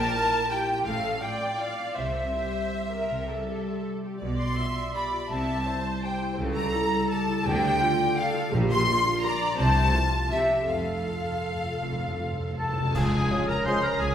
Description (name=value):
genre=classical, orchestral ballroom waltz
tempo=149-183 BPM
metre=3/4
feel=rubato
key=F major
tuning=A4 = 440 Hz
part: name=rich studio violin section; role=melody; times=0.0-14.1 s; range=E5 to C6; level=-35 LUFS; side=left 2 dB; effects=none
part: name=bright large flute ensemble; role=second line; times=0.0-14.1 s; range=E5 to C6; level=-29 LUFS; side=left 1 dB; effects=none
part: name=clear studio violin section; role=second line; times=0.0-13.7 s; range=Db4 to C6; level=-36 LUFS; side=left 2 dB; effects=none
part: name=rich studio viola section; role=accompaniment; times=0.0-13.8 s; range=F3 to E5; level=-32 LUFS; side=right 2 dB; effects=none
part: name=concert harp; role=arpeggios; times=0.0-14.1 s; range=A2 to D5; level=-33 LUFS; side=left 3 dB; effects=none
part: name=clear studio cello section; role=bass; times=0.0-14.1 s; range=Db2 to D3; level=-34 LUFS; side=right 1 dB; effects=none
part: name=rich studio double bass section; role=bass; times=0.0-14.1 s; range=F1 to D2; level=-32 LUFS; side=right 1 dB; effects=none
part: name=cymbal swell, clash cymbals and concert bass drum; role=percussion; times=10.7-13.6 s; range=none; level=-37 LUFS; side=equal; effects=none
part: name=timpani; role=percussion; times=10.7-12.9 s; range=F2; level=-31 LUFS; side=equal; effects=none
part: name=clear oboe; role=second line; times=12.6-14.1 s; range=Ab4 to C5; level=-33 LUFS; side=right 1 dB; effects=none
part: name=warm clarinet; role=second line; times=12.6-14.1 s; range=Ab4 to C5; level=-33 LUFS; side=equal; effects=none
part: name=mellow bassoon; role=accompaniment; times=12.9-14.1 s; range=Db4 to F4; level=-31 LUFS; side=right 3 dB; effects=none
part: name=dark French horn section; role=sustained chords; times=13.3-13.8 s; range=Ab3 to F4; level=-35 LUFS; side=left 3 dB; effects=none
part: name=clear trumpet section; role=stabs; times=13.3-13.8 s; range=Ab4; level=-34 LUFS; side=right 1 dB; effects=none
room=wet recital hall reverb, RT60 1.6 s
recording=recorded in a church or concert hall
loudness=-24 LUFS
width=side -9 dB against mid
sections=0.0-12.9 A section; 12.9-14.1 B section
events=timpani fill 10.7-12.9; band accent 12.9-13.3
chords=0.0 C7/Bb; 0.9 F/A; 2.0 C; 4.2 G7/B; 5.3 C; 6.4 A7/C#; 7.5 Dm; 8.5 Bb; 9.6 F/C; 10.3 C; 10.7 F; 12.9 Db